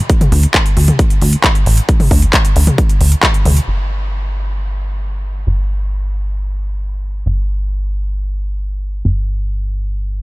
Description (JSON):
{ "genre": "uplifting trance", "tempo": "134 BPM", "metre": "4/4", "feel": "straight", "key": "unclear", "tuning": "A4 = 440 Hz", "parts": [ { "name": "big-room dance drum kit", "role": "drums", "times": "0.1-3.7 s", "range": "handclaps, hi-hat, toms", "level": "-17 LUFS", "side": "equal", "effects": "low-pass filter on hats, low-pass filter on toms, low-pass filter on snare" }, { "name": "electronic kick drum", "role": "drums", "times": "0.1-3.3 s", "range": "none", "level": "-12 LUFS", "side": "equal", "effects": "none" }, { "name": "plucky analog bass", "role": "bass", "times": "0.3-10.2 s", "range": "G1 to D2", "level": "-15 LUFS", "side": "equal", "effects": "sidechain pumping" } ], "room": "little or no reverb", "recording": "none", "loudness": "-13 LUFS", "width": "side -21 dB against mid", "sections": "0.0-3.7 A section; 3.7-10.2 B section", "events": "filter sweep on drum 3.7-10.2", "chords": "none", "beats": "| 0.10 0.54 0.99 1.44 | 1.89 2.33 2.78 3.23 | 3.68 4.13 4.57 5.02 | 5.47 5.92 6.37 6.81 | 7.26 7.71 8.16 8.60 | 9.05 9.50 9.95" }